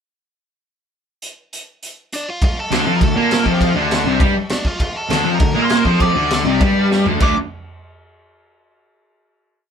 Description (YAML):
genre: punk rock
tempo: 200 BPM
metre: 4/4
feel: straight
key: D minor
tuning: A4 = 441 Hz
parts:
  - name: raw garage drum kit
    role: drums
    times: 1.2-7.3 s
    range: crash cymbal, hi-hat, kick drum, snare drum, toms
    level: -19 LUFS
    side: equal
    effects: none
  - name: biting lead guitar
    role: melody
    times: 2.1-7.4 s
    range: D4 to D6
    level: -23 LUFS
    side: left 1 dB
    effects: overdrive
  - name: distorted electric guitar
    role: riff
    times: 2.7-7.3 s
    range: C3 to D4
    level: -19 LUFS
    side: left 6 dB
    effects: distortion
  - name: sludgy distorted guitar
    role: riff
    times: 2.7-7.3 s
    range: C3 to D4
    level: -18 LUFS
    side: right 4 dB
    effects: overdrive
  - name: fuzz picked electric bass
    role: bass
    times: 2.7-7.3 s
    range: C2 to Bb2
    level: -23 LUFS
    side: equal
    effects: overdrive
room: moderate small room reverb, RT60 0.5 s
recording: band playing live in one room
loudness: -14 LUFS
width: side -7 dB against mid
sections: 1.2-2.4 pickup bar; 2.4-7.2 riff; 7.2-8.4 final chord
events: drum fill 6.9-7.2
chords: 1.2 Dm; 7.2 D5